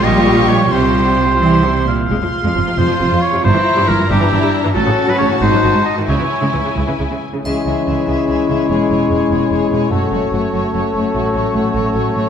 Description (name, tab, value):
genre	classical, dramatic, fast romantic movement for symphony orchestra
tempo	84-100 BPM (dotted quarters)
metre	6/8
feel	straight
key	C# minor from 4.8 s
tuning	A4 = 440 Hz
part	warm symphonic violin section	melody	0.0-12.3 s	C#5 to Db6	-26 LUFS	left 6 dB	none
part	rich chamber violin section	second line	0.0-12.3 s	C#4 to G#4	-22 LUFS	left 4 dB	none
part	warm oboe	second line	0.0-12.3 s	G4 to F5	-20 LUFS	right 1 dB	none
part	rich symphonic viola section	accompaniment	0.0-12.3 s	C3 to F#4	-20 LUFS	left 1 dB	none
part	rich symphonic cello section	bass	0.0-12.2 s	E2 to E3	-20 LUFS	right 2 dB	none
part	rich symphonic double bass section	bass	0.0-12.2 s	E1 to C#2	-21 LUFS	right 2 dB	none
part	warm clarinet	second line	7.4-12.3 s	E4 to F#4	-21 LUFS	left 6 dB	none
part	mellow French horn section	sustained chords	7.4-12.3 s	E3 to C#4	-20 LUFS	left 4 dB	none
part	warm bassoon	accompaniment	7.5-12.3 s	G#3 to A3	-22 LUFS	equal	none
part	triangle	percussion	7.5-8.2 s	none	-37 LUFS	left 1 dB	none
room	wet concert hall reverb, RT60 2.4 s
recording	dark, warm production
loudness	-13 LUFS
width	side -8 dB against mid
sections	0.0-7.4 A section; 7.4-12.3 B section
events	none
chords	0.0 Gm7b5/Bb; 0.7 Csus4; 1.4 C; 2.1 F5; 3.4 Edim/G; 4.8 F#m/A; 5.4 G#7b9; 6.1 C#m; 8.7 C#m/E; 9.9 F#m; 11.1 F#m/A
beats	0.03 | 0.71 1.40 | 2.10 2.77 | 3.44 4.10 | 4.75 5.41 | 6.08 6.77 | 7.45 8.07 | 8.69 9.31 | 9.91 10.53 | 11.14 11.74